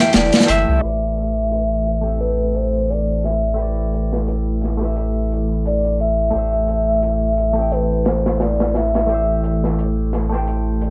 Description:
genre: trip hop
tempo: 87 BPM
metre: 4/4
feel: swing 56% on 16ths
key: A minor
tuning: A4 = 440 Hz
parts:
  - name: pure breathy sine lead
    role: melody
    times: 0.0-9.4 s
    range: B4 to E5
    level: -23 LUFS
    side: equal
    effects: chorus, tape echo
  - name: semi-hollow electric guitar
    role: accompaniment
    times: 0.0-10.9 s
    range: A3 to G5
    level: -27 LUFS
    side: equal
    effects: harmonic tremolo, tape echo
  - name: dark analog pad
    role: sustained chords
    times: 0.0-10.9 s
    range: E3 to E4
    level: -30 LUFS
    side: equal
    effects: chorus, phaser, vintage 12-bit sampler grit
  - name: soft dub sub bass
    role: bass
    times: 0.1-10.9 s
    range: E1 to C2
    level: -24 LUFS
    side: equal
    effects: none
  - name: crunchy breakbeat drum kit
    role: drums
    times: 0.1-10.9 s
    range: hi-hat, snare drum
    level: -22 LUFS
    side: equal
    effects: high-pass filter on kick, high-pass filter on hats, high-pass filter on snare, high-pass filter on room
room: light reverb, studio reverb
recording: dry, gritty hardware recording, cassette tape, low-pass filter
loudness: -19 LUFS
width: mono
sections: 0.8-10.9 A section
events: break 0.0-0.8; filter sweep on analog synth pad 0.8-10.9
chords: 0.0 C; 0.8 Am11; 6.3 C/A

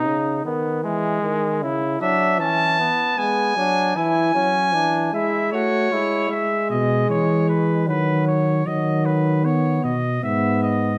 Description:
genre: classical, imitative canzona for brass ensemble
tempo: 77 BPM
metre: 3/4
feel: straight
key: unclear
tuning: A4 = 440 Hz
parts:
  - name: mellow trumpet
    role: second line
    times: 0.0-6.3 s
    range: G#3 to F#4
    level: -27 LUFS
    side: equal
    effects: none
  - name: warm trombone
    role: accompaniment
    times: 0.0-11.0 s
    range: C#3 to B3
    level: -26 LUFS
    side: equal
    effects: none
  - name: clear trumpet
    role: melody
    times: 2.0-11.0 s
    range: B4 to A5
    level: -24 LUFS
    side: equal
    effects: none
  - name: mellow tuba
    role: bass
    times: 6.7-11.0 s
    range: G#2 to E3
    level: -23 LUFS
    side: equal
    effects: none
room: wet recital hall reverb, RT60 1.5 s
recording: close, detailed microphones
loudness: -20 LUFS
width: mono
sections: 0.0-11.0 A section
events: none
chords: 0.0 B; 0.8 E; 1.6 A/C#; 3.2 Bm6; 4.0 E; 5.5 A; 6.3 E; 7.9 B/D#; 10.2 E/G#

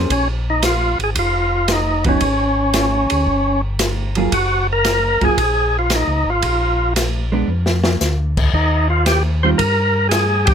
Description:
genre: soul jazz organ trio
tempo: 114 BPM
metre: 4/4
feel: swing 69% on 8ths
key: Bb minor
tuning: A4 = 441 Hz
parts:
  - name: vintage hollow-body jazz guitar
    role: accompaniment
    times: 0.0-9.6 s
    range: Eb3 to C5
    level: -19 LUFS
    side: right 4 dB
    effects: none
  - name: mellow tonewheel organ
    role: bass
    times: 0.0-10.5 s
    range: F1 to G2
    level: -20 LUFS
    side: equal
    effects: slow rotary speaker
  - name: percussive tonewheel organ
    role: melody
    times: 0.1-10.5 s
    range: Db4 to C5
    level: -17 LUFS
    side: equal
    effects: overdrive, fast rotary speaker
  - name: open jazz drum kit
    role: drums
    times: 0.1-10.5 s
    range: crash cymbal, hi-hat, kick drum, ride cymbal, snare drum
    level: -21 LUFS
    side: equal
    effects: none
room: little or no reverb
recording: close, detailed microphones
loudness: -15 LUFS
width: side -8 dB against mid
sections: 0.1-10.5 A section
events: drum fill 7.5-8.0; band accent 10.4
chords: 0.1 Bb5; 2.2 Absus4; 3.3 Gmmaj7; 4.3 Gbmaj9; 6.4 Bb; 8.5 Eb

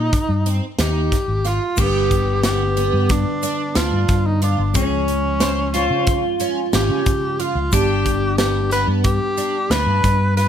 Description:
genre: progressive instrumental, band music in an uneven meter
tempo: 182 BPM (eighths)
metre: 9/8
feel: straight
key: unclear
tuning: A4 = 440 Hz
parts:
  - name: mellow tenor saxophone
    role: melody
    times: 0.0-10.5 s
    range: Db4 to B4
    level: -22 LUFS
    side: equal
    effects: none
  - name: picked twelve-string acoustic guitar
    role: arpeggios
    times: 0.0-10.5 s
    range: B3 to C5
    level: -26 LUFS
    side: right 5 dB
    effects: analog chorus
  - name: fretless electric bass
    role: bass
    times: 0.0-10.5 s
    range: G1 to Db3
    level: -21 LUFS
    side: left 1 dB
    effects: none
  - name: modern studio drum kit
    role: drums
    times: 0.1-10.5 s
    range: crash cymbal, hi-hat, kick drum, snare drum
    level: -22 LUFS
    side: equal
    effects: none
  - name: electric guitar at the edge of break-up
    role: second line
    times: 1.8-10.5 s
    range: B3 to F4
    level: -25 LUFS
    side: equal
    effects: none
  - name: mellow tine electric piano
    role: accompaniment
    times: 1.8-10.5 s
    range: D3 to G4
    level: -29 LUFS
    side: left 2 dB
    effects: slow stereo tremolo
  - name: egg shaker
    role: percussion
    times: 1.8-10.2 s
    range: none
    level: -35 LUFS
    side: left 7 dB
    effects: none
room: light reverb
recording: none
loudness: -16 LUFS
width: side -9 dB against mid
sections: 0.0-1.8 A section; 1.8-10.5 B section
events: none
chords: 0.0 Cm (rootless); 1.8 G; 4.7 Db; 7.7 G

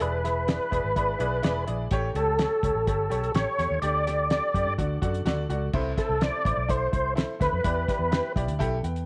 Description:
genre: uptempo 1960s-style soul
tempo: 126 BPM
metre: 4/4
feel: straight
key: unclear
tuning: A4 = 442 Hz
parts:
  - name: tonewheel organ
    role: melody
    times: 0.0-8.3 s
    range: A4 to D5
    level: -29 LUFS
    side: equal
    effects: overdrive, chorus vibrato, slow rotary speaker
  - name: warm upright piano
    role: accompaniment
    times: 0.0-9.1 s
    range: A2 to G5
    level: -35 LUFS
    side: equal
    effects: none
  - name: vintage muted fingered electric bass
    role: bass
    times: 0.0-9.0 s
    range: E1 to G2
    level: -32 LUFS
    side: equal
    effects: none
  - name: cloth-damped thuddy drum kit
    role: drums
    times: 0.0-9.1 s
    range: crash cymbal, hi-hat, kick drum, snare drum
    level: -31 LUFS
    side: equal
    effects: none
room: light reverb, small room ambience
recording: none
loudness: -26 LUFS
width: mono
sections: 0.0-5.7 A section; 5.7-9.1 B section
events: none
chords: 0.0 E7; 1.9 A7; 3.8 Dsus4; 4.8 D; 5.7 C6; 7.6 Em7

